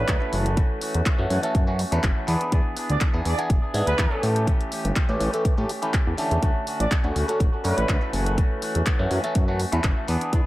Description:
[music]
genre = filtered disco house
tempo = 123 BPM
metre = 4/4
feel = swing 53% on 16ths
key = unclear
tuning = A4 = 441 Hz
[part]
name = warm trumpet section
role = melody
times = 0.0-8.1 s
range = B4 to D5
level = -33 LUFS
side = right 2 dB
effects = sidechain pumping, dub echo
[part]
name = overdriven clav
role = accompaniment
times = 0.0-10.5 s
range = D3 to B4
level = -28 LUFS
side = equal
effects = phaser, sidechain pumping, dub echo
[part]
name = electric guitar with an envelope filter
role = riff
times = 0.0-10.5 s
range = E3 to G#4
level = -32 LUFS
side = left 1 dB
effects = sidechain pumping, dub echo
[part]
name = fat analog bass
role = bass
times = 0.0-10.4 s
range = D1 to A2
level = -24 LUFS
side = equal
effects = tube saturation, sidechain pumping
[part]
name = electronic kick drum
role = drums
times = 0.1-10.4 s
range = none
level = -22 LUFS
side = equal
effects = none
[part]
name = punchy analog drum machine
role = drums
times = 0.1-10.4 s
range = handclaps, hi-hat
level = -31 LUFS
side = equal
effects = overdrive, sidechain pumping on hats
[sound]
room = light reverb, digital ambience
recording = echo-heavy mix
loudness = -20 LUFS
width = side -17 dB against mid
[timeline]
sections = 0.0-10.5 A section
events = none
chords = 0.3 F#m7; 2.3 E7; 4.2 A7; 6.4 Dmaj7; 8.1 F#m7

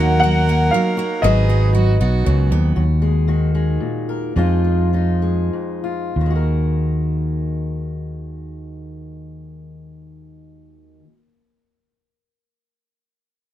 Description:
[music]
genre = acoustic folk duo or small band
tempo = 90-118 BPM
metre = 3/4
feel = straight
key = Eb minor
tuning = A4 = 440 Hz
[part]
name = warm upright piano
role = melody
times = 0.0-2.2 s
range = Eb5 to Gb5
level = -20 LUFS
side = left 2 dB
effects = plate reverb
[part]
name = warm fiddle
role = second line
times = 0.0-2.5 s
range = Gb4 to Bb4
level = -25 LUFS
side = right 2 dB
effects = none
[part]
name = fingerpicked steel-string acoustic guitar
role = accompaniment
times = 0.0-11.2 s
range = Eb2 to Cb5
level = -26 LUFS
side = left 3 dB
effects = none
[part]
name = picked steel-string acoustic guitar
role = arpeggios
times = 0.0-2.8 s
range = Gb3 to Eb4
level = -23 LUFS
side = right 4 dB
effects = none
[part]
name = fretless electric bass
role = bass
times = 0.0-11.0 s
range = Ab1 to F2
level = -18 LUFS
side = equal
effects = none
[sound]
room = light reverb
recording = none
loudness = -16 LUFS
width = side -12 dB against mid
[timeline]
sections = 0.0-2.8 A section; 2.8-6.2 B section; 6.2-10.1 C section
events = slowing down 2.8-6.2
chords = 0.0 Ebm; 1.2 Abm7; 2.8 Ebm; 4.4 Fm7; 6.2 Ebm

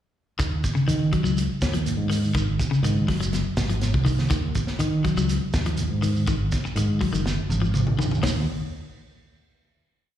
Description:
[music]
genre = afrobeat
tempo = 122 BPM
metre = 4/4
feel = straight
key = Eb dorian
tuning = A4 = 439 Hz
[part]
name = electric guitar at the edge of break-up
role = arpeggios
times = 0.4-8.4 s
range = Db3 to Gb3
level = -26 LUFS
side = left 3 dB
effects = slapback echo
[part]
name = fingered electric bass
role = bass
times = 0.4-8.5 s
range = Gb1 to Eb3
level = -24 LUFS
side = right 1 dB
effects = none
[part]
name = tight funk drum kit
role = drums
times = 0.4-8.3 s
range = hi-hat, kick drum, snare drum, toms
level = -27 LUFS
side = equal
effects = none
[part]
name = shekere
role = percussion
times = 0.4-8.4 s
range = none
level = -33 LUFS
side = right 3 dB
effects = slapback echo
[sound]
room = moderate club reverb, RT60 0.7 s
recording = live gig heard through the venue's PA, recital hall reverb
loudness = -21 LUFS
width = side -11 dB against mid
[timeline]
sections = 0.4-8.2 groove; 8.2-10.2 final note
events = drum fill 7.3-8.2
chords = 0.4 Ebm7; 2.4 Ab7(no3); 4.3 Ebm; 6.3 Ab7sus2; 8.2 N.C.

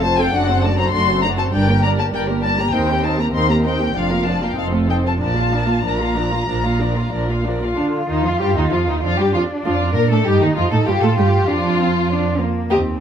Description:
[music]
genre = quick classical-period movement for string orchestra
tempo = 92-101 BPM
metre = 4/4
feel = rubato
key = Bb major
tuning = A4 = 441 Hz
[part]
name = muted chamber violin section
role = melody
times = 0.0-12.8 s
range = D4 to C6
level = -23 LUFS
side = left 5 dB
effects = none
[part]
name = muted studio violin section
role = second line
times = 0.0-12.8 s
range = D4 to F5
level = -22 LUFS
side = left 2 dB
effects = none
[part]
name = muted chamber viola section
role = accompaniment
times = 0.0-12.8 s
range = D3 to Bb4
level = -22 LUFS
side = right 2 dB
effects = none
[part]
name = muted chamber cello section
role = bass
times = 0.0-13.0 s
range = Eb2 to F4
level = -23 LUFS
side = right 2 dB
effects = none
[part]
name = muted studio double bass section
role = bass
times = 0.0-13.0 s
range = F1 to Bb2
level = -21 LUFS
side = right 2 dB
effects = none
[sound]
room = moderate recital hall reverb, RT60 1.6 s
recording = close, detailed microphones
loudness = -15 LUFS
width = side -8 dB against mid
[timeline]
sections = 0.0-7.8 A section; 7.8-13.0 B section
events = none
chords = 0.3 D7/F#; 1.5 Gm; 2.7 Cm7/Eb; 4.0 Bb/F; 4.6 F7; 5.2 Bb; 10.3 F7; 11.5 Bb/F

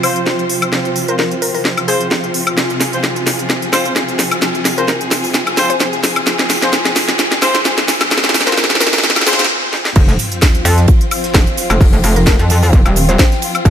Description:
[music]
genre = bass house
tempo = 130 BPM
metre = 4/4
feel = swing 55% on 16ths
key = F minor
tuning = A4 = 440 Hz
[part]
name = rich studio string section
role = sustained chords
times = 0.0-13.7 s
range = C3 to C5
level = -21 LUFS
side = left 1 dB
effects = sidechain pumping, low-pass filter
[part]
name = warm horn section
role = stabs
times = 0.0-9.4 s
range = C4 to C5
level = -22 LUFS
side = left 1 dB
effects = sidechain pumping, low-pass filter, dub echo
[part]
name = house drum kit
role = drums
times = 0.0-13.7 s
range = crash cymbal, hi-hat, shaker, snare drum, woodblock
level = -15 LUFS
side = equal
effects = none
[part]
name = warbly tape-like pad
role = texture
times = 0.0-13.7 s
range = F4 to G5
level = -26 LUFS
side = right 2 dB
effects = chorus, built-in reverb, sidechain pumping
[part]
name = mallet-like synth pluck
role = melody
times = 1.1-13.3 s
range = Ab4 to C5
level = -23 LUFS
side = left 4 dB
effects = chorus, dub echo
[part]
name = riser and sub drop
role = sound effects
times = 6.2-11.8 s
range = none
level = -24 LUFS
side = right 1 dB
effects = none
[part]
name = metallic wobble bass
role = bass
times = 10.0-13.7 s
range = Eb1 to F2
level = -12 LUFS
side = equal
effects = chorus, overdrive, sidechain pumping
[part]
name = electronic kick drum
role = drums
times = 10.0-13.7 s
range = none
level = -10 LUFS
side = equal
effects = none
[part]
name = tight funk drum kit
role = drums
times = 10.0-13.7 s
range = hi-hat, ride cymbal, snare drum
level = -27 LUFS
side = right 3 dB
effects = high-pass filter on cymbals, high-pass filter on hats, high-pass filter on snare, high-pass filter on room
[sound]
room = moderate lush hall reverb, RT60 2.1 s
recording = high-pass filter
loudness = -11 LUFS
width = side -9 dB against mid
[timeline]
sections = 0.0-10.0 A section; 10.0-13.7 B section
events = build-up 0.0-10.0; drum fill 0.0-9.5, 9.7; filter sweep on string section 0.0-10.0; filter sweep 0.0-10.0; break 9.5-10.0; drop 10.0-13.7; impact 10.0-11.8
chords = 0.0 F5

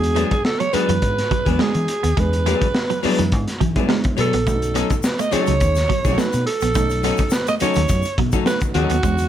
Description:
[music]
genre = funk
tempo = 105 BPM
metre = 4/4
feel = straight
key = unclear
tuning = A4 = 440 Hz
[part]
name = raspy alto saxophone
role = melody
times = 0.0-9.3 s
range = F#4 to D#5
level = -22 LUFS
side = right 3 dB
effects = plate reverb
[part]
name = bright reed electric piano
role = stabs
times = 0.0-9.3 s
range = G3 to A4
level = -27 LUFS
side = right 4 dB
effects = fast tremolo
[part]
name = vintage muted fingered electric bass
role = bass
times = 0.0-9.3 s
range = A#1 to E3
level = -22 LUFS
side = left 1 dB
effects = none
[part]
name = crunchy breakbeat drum kit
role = drums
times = 0.0-9.3 s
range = hi-hat, kick drum, snare drum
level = -22 LUFS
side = left 1 dB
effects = none
[part]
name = archtop guitar, miked and amplified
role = accompaniment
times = 0.1-9.0 s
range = F#3 to A4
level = -23 LUFS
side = left 8 dB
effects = none
[part]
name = semi-hollow electric guitar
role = riff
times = 0.2-9.1 s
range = E3 to B3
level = -26 LUFS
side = right 7 dB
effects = analog chorus
[part]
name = tube shaker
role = percussion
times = 4.5-9.3 s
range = none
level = -35 LUFS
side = left 5 dB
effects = none
[sound]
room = light reverb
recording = none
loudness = -16 LUFS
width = side -10 dB against mid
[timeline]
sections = 0.0-9.3 A section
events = none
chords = 0.0 E9; 4.5 B9

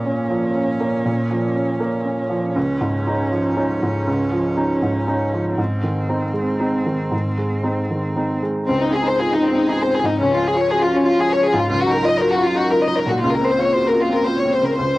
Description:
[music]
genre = neoclassical piano and strings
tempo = 119 BPM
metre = 3/4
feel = rubato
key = Db major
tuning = A4 = 439 Hz
[part]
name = clear cello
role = second line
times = 0.0-15.0 s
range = F3 to Db4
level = -28 LUFS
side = right 2 dB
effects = tape echo
[part]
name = felt-muted upright piano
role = accompaniment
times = 0.0-15.0 s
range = Db2 to Gb4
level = -19 LUFS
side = right 1 dB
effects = none
[part]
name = rich chamber violin section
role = melody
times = 8.7-15.0 s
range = C4 to Eb5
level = -17 LUFS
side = left 2 dB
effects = cassette tape
[sound]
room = light reverb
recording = home recording on cassette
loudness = -17 LUFS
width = side -18 dB against mid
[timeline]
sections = 0.0-8.7 A section; 8.7-15.0 B section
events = none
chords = 0.0 Bbm; 2.6 Dbadd9; 5.6 Ab; 8.7 Ab/Db; 10.2 Db; 11.7 Ebmadd9/Db; 13.2 Bbmadd9/Db

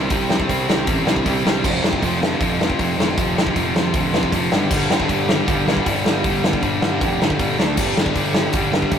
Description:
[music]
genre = punk rock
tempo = 156 BPM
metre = 4/4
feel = straight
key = unclear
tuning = A4 = 439 Hz
[part]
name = distorted electric guitar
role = riff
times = 0.0-9.0 s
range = F2 to D4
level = -23 LUFS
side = left 5 dB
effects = overdrive
[part]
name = sludgy distorted guitar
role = riff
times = 0.0-9.0 s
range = F2 to D4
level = -23 LUFS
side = right 4 dB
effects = overdrive
[part]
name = fuzz picked electric bass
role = bass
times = 0.0-9.0 s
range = F1 to D2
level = -26 LUFS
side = equal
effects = overdrive
[part]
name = big rock drum kit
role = drums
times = 0.1-9.0 s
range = crash cymbal, hi-hat, kick drum, snare drum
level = -20 LUFS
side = equal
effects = none
[sound]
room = light reverb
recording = rough rehearsal-room recording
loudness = -16 LUFS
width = side -8 dB against mid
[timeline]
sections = 0.0-9.0 A section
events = none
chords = 0.0 C5; 1.6 F5; 4.5 G5; 7.6 D5; 7.8 G5

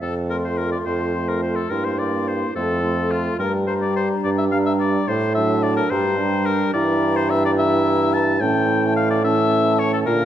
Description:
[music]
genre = quick classical-period movement for wind quintet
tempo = 72 BPM (dotted quarters)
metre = 6/8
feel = straight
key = F major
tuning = A4 = 439 Hz
[part]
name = clear oboe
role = second line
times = 0.0-10.2 s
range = F4 to A5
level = -23 LUFS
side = left 4 dB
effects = none
[part]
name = dark bassoon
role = bass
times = 0.0-10.2 s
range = F2 to Bb2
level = -21 LUFS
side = right 2 dB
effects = none
[part]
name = mellow hollow concert flute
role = melody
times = 0.3-10.2 s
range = F5 to C6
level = -29 LUFS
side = left 8 dB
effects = none
[part]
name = mellow clarinet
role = accompaniment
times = 0.3-10.2 s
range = C#4 to F4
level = -26 LUFS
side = right 7 dB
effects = none
[part]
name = warm French horn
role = accompaniment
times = 0.3-10.2 s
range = D3 to Bb3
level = -27 LUFS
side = left 1 dB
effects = none
[sound]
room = wet recital hall reverb, RT60 1.8 s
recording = dark, warm production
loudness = -18 LUFS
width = side -10 dB against mid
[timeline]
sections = 0.0-10.2 A section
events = none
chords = 0.0 F; 1.7 C7/G; 2.6 F; 3.4 Gm; 5.1 D/A; 5.9 Gm; 6.7 Edim/G; 8.4 A7

